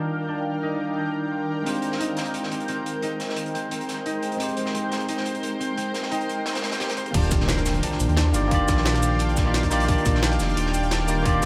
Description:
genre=liquid drum and bass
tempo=175 BPM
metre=4/4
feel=straight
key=Eb major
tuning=A4 = 443 Hz
part: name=bell-like tine electric piano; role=accompaniment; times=0.0-11.5 s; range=Eb3 to D5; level=-31 LUFS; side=equal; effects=subtle chorus, diffuse ambient delay
part: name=shimmering ambient pad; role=sustained chords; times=0.0-11.5 s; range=Eb3 to G5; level=-32 LUFS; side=equal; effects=chorus, built-in reverb, phaser, sidechain pumping
part: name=concert harp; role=arpeggios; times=0.0-11.5 s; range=C4 to C5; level=-32 LUFS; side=equal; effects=low-pass filter, analog delay
part: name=crunchy breakbeat drum kit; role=drums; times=1.7-11.5 s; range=hi-hat, snare drum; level=-35 LUFS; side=equal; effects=high-pass filter on hats, small room ambience, high-pass filter on snare, high-pass filter on room
part: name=dark detuned saw bass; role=bass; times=7.1-11.5 s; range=Eb1 to Eb2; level=-26 LUFS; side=equal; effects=none
part: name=electronic kick drum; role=drums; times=7.1-11.5 s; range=none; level=-26 LUFS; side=equal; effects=overdrive, small room ambience
part: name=jungle sampler-style drum kit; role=drums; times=7.1-11.5 s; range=cabasa, crash cymbal, hi-hat, snare drum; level=-32 LUFS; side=equal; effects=low-pass filter on hats, small room ambience, low-pass filter on perc, low-pass filter on snare, low-pass filter on cymbals
part: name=impact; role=sound effects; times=7.1-8.5 s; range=none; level=-32 LUFS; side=equal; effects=none
room=moderate huge ambient reverb, RT60 4.2 s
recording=dreamy mix soaked in reverb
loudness=-24 LUFS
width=mono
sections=0.0-7.1 A section; 7.1-11.5 B section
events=filter sweep on tine electric piano 0.0-7.1; filter sweep on ambient pad 0.0-7.1; filter sweep on harp 0.0-7.1; drop 7.1-11.5; impact 7.1-8.5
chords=0.0 Ebmaj9; 1.7 Abmaj7; 7.1 Ebmaj9

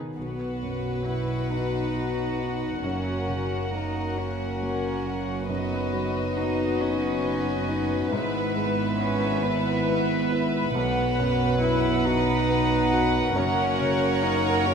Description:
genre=cinematic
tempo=46 BPM (dotted quarters)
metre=6/8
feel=rubato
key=B major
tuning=A4 = 441 Hz
part: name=warm grand piano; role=accompaniment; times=0.0-14.7 s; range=B1 to B4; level=-32 LUFS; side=left 1 dB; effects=none
part: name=warm studio cello section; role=bass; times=0.0-14.7 s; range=F#2 to C#3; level=-33 LUFS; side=right 4 dB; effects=none
part: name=rich cello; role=melody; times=0.2-14.7 s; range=B3 to E4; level=-30 LUFS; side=right 2 dB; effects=none
part: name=warm studio violin section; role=melody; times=0.2-14.7 s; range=D#5 to F#5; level=-33 LUFS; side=left 1 dB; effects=none
part: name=warm chamber violin section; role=second line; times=0.2-14.7 s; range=A#4 to C#5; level=-33 LUFS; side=left 2 dB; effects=none
part: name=warm studio viola section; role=accompaniment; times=0.2-14.7 s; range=F#4 to B4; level=-31 LUFS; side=equal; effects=none
part: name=mellow French horn section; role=sustained chords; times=0.2-14.7 s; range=A#3 to F#4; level=-31 LUFS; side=left 5 dB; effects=none
part: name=warm studio double bass section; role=bass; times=0.2-14.7 s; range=F#1 to B1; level=-32 LUFS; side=right 5 dB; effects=none
room=moderate scoring stage reverb, RT60 1.9 s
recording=none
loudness=-23 LUFS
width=side -6 dB against mid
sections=0.2-14.7 A section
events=none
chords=0.2 B; 2.8 F#; 5.5 B/F#; 8.1 E/G#; 10.8 B; 13.4 F#

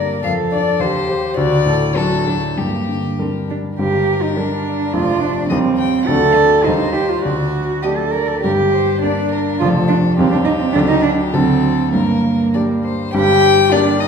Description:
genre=quick classical-period movement for piano trio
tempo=103 BPM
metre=2/4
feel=rubato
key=G minor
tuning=A4 = 440 Hz
part: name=rich violin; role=melody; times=0.0-14.1 s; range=G4 to G5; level=-22 LUFS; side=left 8 dB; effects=none
part: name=dark cello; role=second line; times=0.0-14.1 s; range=Bb3 to Bb4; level=-17 LUFS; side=right 3 dB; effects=none
part: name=clear baby grand piano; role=accompaniment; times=0.0-14.1 s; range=F1 to D5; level=-18 LUFS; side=left 1 dB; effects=none
room=wet recital hall reverb, RT60 1.3 s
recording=heard from further back in the room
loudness=-14 LUFS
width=side -6 dB against mid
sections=0.0-3.8 A section; 3.8-13.1 B section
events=none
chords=0.2 Dm/F; 0.8 Cm/Eb; 1.4 D; 2.6 Gm; 4.9 Dm/F; 5.5 Cm/Eb; 6.1 D; 6.7 Cm/Eb; 7.2 D; 8.4 Gm; 9.6 Dm/F; 10.2 Cm/Eb; 10.8 D; 11.9 Gm

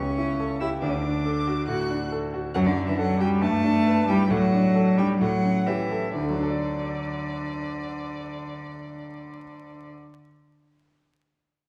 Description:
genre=quick classical-period movement for piano trio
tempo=125-140 BPM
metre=4/4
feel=straight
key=D major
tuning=A4 = 442 Hz
part: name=dark violin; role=melody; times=0.0-9.9 s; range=D5 to F#6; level=-37 LUFS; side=equal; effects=none
part: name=rich cello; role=second line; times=0.0-9.9 s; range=D3 to F#4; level=-27 LUFS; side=equal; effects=none
part: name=warm concert grand piano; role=accompaniment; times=0.0-10.3 s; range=C#2 to D5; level=-30 LUFS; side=equal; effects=none
room=wet recital hall reverb, RT60 1.7 s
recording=dark, warm production, vinyl crackle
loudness=-24 LUFS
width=mono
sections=0.0-6.1 A section; 6.1-9.9 B section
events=slowing down 1.7-6.1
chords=0.0 A7/C#; 0.8 D; 2.5 D/F#; 3.4 Em7/G; 4.3 D/A; 5.2 A7; 6.1 D

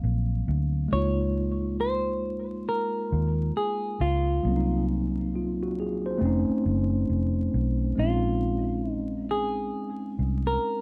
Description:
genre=lo-fi hip hop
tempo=68 BPM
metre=4/4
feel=swing 64% on 16ths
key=Bb minor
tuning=A4 = 439 Hz
part: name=mellow tine electric piano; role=accompaniment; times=0.0-10.8 s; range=Gb3 to F5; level=-31 LUFS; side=equal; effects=cassette tape, low-pass filter
part: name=vintage muted fingered electric bass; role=bass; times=0.0-10.6 s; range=F1 to Eb2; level=-30 LUFS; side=equal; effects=none
part: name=semi-hollow electric guitar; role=melody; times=0.9-10.8 s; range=F4 to Db5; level=-32 LUFS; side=equal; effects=low-pass filter
room=moderate small room reverb, RT60 0.5 s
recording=dark, warm production, vinyl crackle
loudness=-27 LUFS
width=mono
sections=0.0-10.8 A section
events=none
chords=0.0 Ab13 (rootless); 0.9 Db69; 4.4 Cm7b5; 6.2 F7b13; 8.0 Bbm11

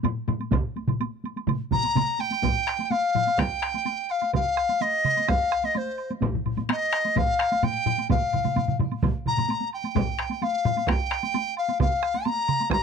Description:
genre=japanese traditional, taiko drum ensemble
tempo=128 BPM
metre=4/4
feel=straight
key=F suspended pentatonic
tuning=A4 = 440 Hz
part: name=taiko ensemble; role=percussion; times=0.0-12.8 s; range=none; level=-31 LUFS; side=right 2 dB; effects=none
part: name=taiko ensemble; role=percussion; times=0.0-11.2 s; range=none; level=-27 LUFS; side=left 3 dB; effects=none
part: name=woodblock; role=percussion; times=0.0-12.8 s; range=none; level=-38 LUFS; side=right 12 dB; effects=none
part: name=solo taiko drums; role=percussion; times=0.5-12.8 s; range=none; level=-29 LUFS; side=right 8 dB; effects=none
part: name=taiko ensemble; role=percussion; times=0.5-12.8 s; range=none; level=-28 LUFS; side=right 2 dB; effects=none
part: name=mellow hollow dizi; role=melody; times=1.7-12.8 s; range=C5 to Bb5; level=-24 LUFS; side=left 2 dB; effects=none
room=light reverb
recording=close, detailed microphones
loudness=-22 LUFS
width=side -6 dB against mid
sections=0.0-2.4 A section; 2.4-12.8 B section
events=speeding up 0.0-12.8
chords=none

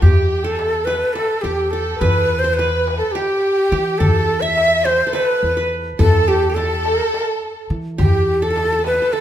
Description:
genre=Turkish makam ensemble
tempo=210 BPM (eighths)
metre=7/8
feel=straight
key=unclear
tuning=A4 = 440 Hz
part: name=breathy ney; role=melody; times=0.0-9.2 s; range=G4 to E5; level=-18 LUFS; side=equal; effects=none
part: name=qanun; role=second line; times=0.0-9.2 s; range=G4 to E5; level=-26 LUFS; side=right 2 dB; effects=none
part: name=rich studio violin section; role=second line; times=0.0-9.2 s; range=G4 to E5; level=-24 LUFS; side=right 1 dB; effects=none
part: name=upright bass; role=bass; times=0.0-9.0 s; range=E2 to E3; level=-20 LUFS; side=equal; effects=none
part: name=darbuka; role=percussion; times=0.0-9.2 s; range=none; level=-22 LUFS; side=left 1 dB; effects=none
room=moderate recital hall reverb, RT60 1.6 s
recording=minimal, uncompressed stereo recording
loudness=-15 LUFS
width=side -11 dB against mid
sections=0.0-9.2 A section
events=none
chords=none

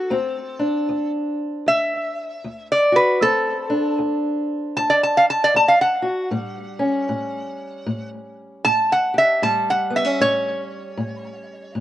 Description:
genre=acoustic country blues, solo or duo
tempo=77 BPM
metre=4/4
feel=swing 61% on 8ths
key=D mixolydian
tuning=A4 = 440 Hz
part: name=lap resonator guitar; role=melody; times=0.0-11.8 s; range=A4 to A5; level=-17 LUFS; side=equal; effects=slapback echo
part: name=fingerpicked steel-string acoustic guitar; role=accompaniment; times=0.0-11.8 s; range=D2 to G4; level=-24 LUFS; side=left 1 dB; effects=slapback echo
room=little or no reverb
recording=recorded outdoors, with no room sound, nothing above 10.5 kHz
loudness=-18 LUFS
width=side -13 dB against mid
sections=0.0-11.8 A section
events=resonator guitar played with a steel bar solo 0.0-11.8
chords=0.0 D7(no3); 6.3 A7

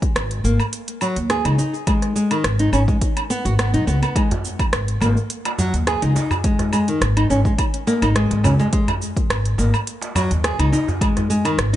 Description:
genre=organic downtempo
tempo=105 BPM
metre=4/4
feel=swing 53% on 16ths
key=G# minor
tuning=A4 = 440 Hz
part: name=electronic kick drum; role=drums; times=0.0-11.1 s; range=none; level=-20 LUFS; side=equal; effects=none
part: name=organic electronic drum kit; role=drums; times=0.0-11.8 s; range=cabasa, hi-hat, rim click, woodblock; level=-25 LUFS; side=right 2 dB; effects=none
part: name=upright bass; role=bass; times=0.2-11.8 s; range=G#1 to D#2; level=-19 LUFS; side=equal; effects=sidechain pumping
part: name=nylon-string guitar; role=arpeggios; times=0.4-11.8 s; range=D#3 to G#4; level=-21 LUFS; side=left 1 dB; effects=ping-pong delay
part: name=darbuka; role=percussion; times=4.3-11.3 s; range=none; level=-27 LUFS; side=right 1 dB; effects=none
room=light reverb, studio ambience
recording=nothing above 10.9 kHz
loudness=-17 LUFS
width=side -13 dB against mid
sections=0.0-11.8 A section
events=none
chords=0.0 G#m; 4.2 N.C.

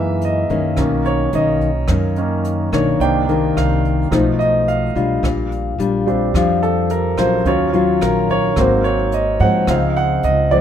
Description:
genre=bossa nova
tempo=108 BPM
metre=4/4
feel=straight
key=unclear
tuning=A4 = 440 Hz
part: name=clear baby grand piano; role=accompaniment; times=0.0-10.6 s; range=D#3 to G5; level=-18 LUFS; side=right 4 dB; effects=none
part: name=nylon-string guitar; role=accompaniment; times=0.0-10.6 s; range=Gb2 to E#4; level=-19 LUFS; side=left 5 dB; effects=none
part: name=upright bass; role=bass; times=0.0-10.6 s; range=Ab1 to Ab2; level=-21 LUFS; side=right 1 dB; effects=none
part: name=jazz brush drum kit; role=drums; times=0.2-10.6 s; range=hi-hat, kick drum, rim click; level=-26 LUFS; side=right 1 dB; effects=none
room=light reverb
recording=minimal, uncompressed stereo recording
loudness=-14 LUFS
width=side -9 dB against mid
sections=0.0-10.6 A section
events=grand piano solo 0.0-10.6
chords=0.0 Gb13; 0.8 Bmaj9; 3.0 Cm9; 4.1 B7#11; 5.2 Bb6; 7.5 Ebm9; 8.6 Ab9; 9.7 Dbmaj7

